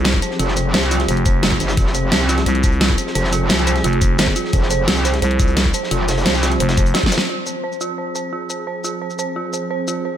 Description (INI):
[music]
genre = dark technical drum and bass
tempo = 174 BPM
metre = 4/4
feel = straight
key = F minor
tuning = A4 = 444 Hz
[part]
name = swarming drone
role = sustained chords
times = 0.0-10.2 s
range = F3 to C5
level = -25 LUFS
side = right 1 dB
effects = built-in reverb, sidechain pumping
[part]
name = dark detuned synth bell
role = arpeggios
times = 0.0-10.2 s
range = F4 to C5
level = -23 LUFS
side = right 3 dB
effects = chorus, phaser, sidechain pumping, low-pass filter, tape echo
[part]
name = growling FM bass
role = bass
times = 0.0-6.9 s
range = F1 to C2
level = -18 LUFS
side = equal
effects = none
[part]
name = crunchy breakbeat drum kit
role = drums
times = 0.0-7.3 s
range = hi-hat, snare drum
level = -28 LUFS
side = equal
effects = high-pass filter on hats, high-pass filter on snare, high-pass filter on room
[part]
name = dubstep drum kit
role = drums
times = 0.1-9.9 s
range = hi-hat, rim click, shaker, snare drum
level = -20 LUFS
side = equal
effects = none
[part]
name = electronic kick drum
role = drums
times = 0.1-7.1 s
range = none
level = -18 LUFS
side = equal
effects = none
[part]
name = metallic wobble bass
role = bass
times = 0.4-6.6 s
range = F1 to C2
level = -19 LUFS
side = equal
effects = distortion, chorus, overdrive, sidechain pumping
[sound]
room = little or no reverb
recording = none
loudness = -15 LUFS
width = side -10 dB against mid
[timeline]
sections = 0.0-7.3 A section; 7.3-10.2 B section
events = drop 0.0-7.3; drum fill 6.9-7.3; band accent 7.2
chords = 0.0 Fm